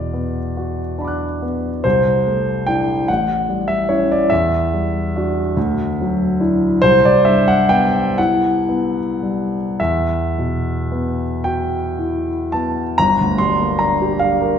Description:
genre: classical, impressionist solo piano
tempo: 34-52 BPM (dotted quarters)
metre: 6/8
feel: rubato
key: E minor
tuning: A4 = 440 Hz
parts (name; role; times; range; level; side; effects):
- warm grand piano; solo; 0.0-14.6 s; G1 to F#6; -15 LUFS; equal; none
room: wet recital hall reverb, RT60 1.5 s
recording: heard from further back in the room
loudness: -15 LUFS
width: side -8 dB against mid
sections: 0.0-13.0 A section; 13.0-14.6 B section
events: none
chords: 0.0 Bm7/E; 1.8 C69; 3.1 A6; 4.3 Em9; 5.6 Dadd9; 6.8 Cmaj7; 9.8 Emadd9; 13.0 Gm7

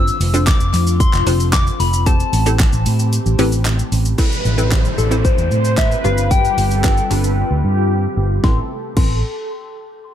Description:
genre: dance-pop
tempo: 113 BPM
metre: 4/4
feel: straight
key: A minor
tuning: A4 = 437 Hz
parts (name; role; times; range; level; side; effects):
- soft struck synth lead; melody; 0.0-9.2 s; A4 to E6; -23 LUFS; left 4 dB; chorus, low-pass filter, dub echo
- hollow square pluck; accompaniment; 0.0-9.2 s; C4 to C5; -22 LUFS; equal; chorus, sidechain pumping, low-pass filter
- ensemble organ-string; sustained chords; 0.0-8.7 s; C3 to G4; -25 LUFS; left 2 dB; phaser, ensemble chorus, sidechain pumping, low-pass filter
- vintage muted fingered electric bass; bass; 0.0-9.2 s; F1 to A2; -17 LUFS; equal; sidechain pumping
- pop drum kit; drums; 0.1-9.1 s; crash cymbal, handclaps, hi-hat, kick drum, shaker, snare drum; -18 LUFS; equal; none
- group handclap; percussion; 0.5-3.8 s; none; -32 LUFS; right 4 dB; none
- supersaw pad; melody; 4.2-9.2 s; G4 to D5; -26 LUFS; right 2 dB; sidechain pumping, low-pass filter, dub echo
- downlifter; sound effects; 4.2-8.4 s; none; -28 LUFS; equal; none
room: little or no reverb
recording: dark, warm production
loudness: -14 LUFS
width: side -10 dB against mid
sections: 0.0-4.2 A section; 4.2-8.4 B section; 8.4-10.1 C section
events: kick muted 3.1-4.2; filter sweep 4.2-8.4; silent gap 7.4-8.4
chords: 0.0 Dm7/F; 2.1 Am7; 4.2 Amadd9; 6.0 G7; 8.4 Amadd9

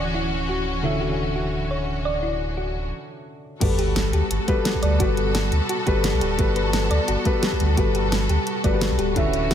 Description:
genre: liquid drum and bass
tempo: 173 BPM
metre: 4/4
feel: swing 54% on 16ths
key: G lydian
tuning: A4 = 441 Hz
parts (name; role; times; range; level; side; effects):
- felt-muted upright piano; accompaniment; 0.0-9.5 s; D3 to E5; -26 LUFS; left 1 dB; vintage 12-bit sampler grit, tape echo
- clear symphonic string section; sustained chords; 0.0-9.5 s; E3 to A4; -28 LUFS; left 1 dB; none
- thumb-piano-like synth pluck; arpeggios; 0.0-9.5 s; E4 to D5; -30 LUFS; right 1 dB; chorus, diffuse ambient delay
- sub bass with octave; bass; 0.0-9.5 s; D1 to D2; -25 LUFS; equal; none
- electronic kick drum; drums; 3.6-9.2 s; none; -24 LUFS; equal; studio reverb
- pop drum kit; drums; 3.6-9.5 s; crash cymbal, hi-hat, snare drum; -28 LUFS; right 1 dB; low-pass filter on hats, studio reverb, low-pass filter on cymbals, low-pass filter on snare
- sub drop; sound effects; 3.6-5.0 s; none; -31 LUFS; equal; none
room: moderate lush hall reverb, RT60 1.7 s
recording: dreamy mix soaked in reverb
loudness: -20 LUFS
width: side -9 dB against mid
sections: 0.0-3.6 A section; 3.6-9.5 B section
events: break 2.9-3.6; drop 3.6-9.5; impact 3.6-5.0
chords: 0.0 Dmaj9; 3.6 Gmaj9

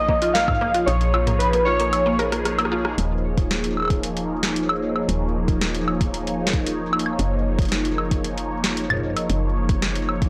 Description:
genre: IDM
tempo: 114 BPM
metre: 4/4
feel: straight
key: unclear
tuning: A4 = 439 Hz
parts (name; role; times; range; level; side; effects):
- warbly lo-fi synth keys; melody; 0.0-2.1 s; B4 to E#5; -24 LUFS; equal; chorus, delay
- phased analog pad; sustained chords; 0.0-10.3 s; E#3 to C#5; -28 LUFS; equal; phaser, chorus
- woody FM bass; bass; 0.0-10.3 s; D#1 to A#1; -29 LUFS; equal; tube saturation
- mallet-like synth pluck; arpeggios; 0.1-2.8 s; A#3 to A#4; -29 LUFS; equal; phaser, ensemble chorus, vintage 12-bit sampler grit, tape echo
- electronic kick drum; drums; 0.1-10.3 s; none; -25 LUFS; equal; none
- booming analog drum machine; drums; 0.2-10.3 s; hi-hat, rim click, snare drum, toms, woodblock; -27 LUFS; equal; tape echo
room: light reverb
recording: blown-out, overdriven recording, overdrive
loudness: -22 LUFS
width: mono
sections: 0.0-3.0 A section; 3.0-10.3 B section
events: kick drops out 0.9-3.0; drum fill 2.2-3.0; band accent 2.8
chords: 0.0 A#m; 3.0 D#5; 7.2 F#

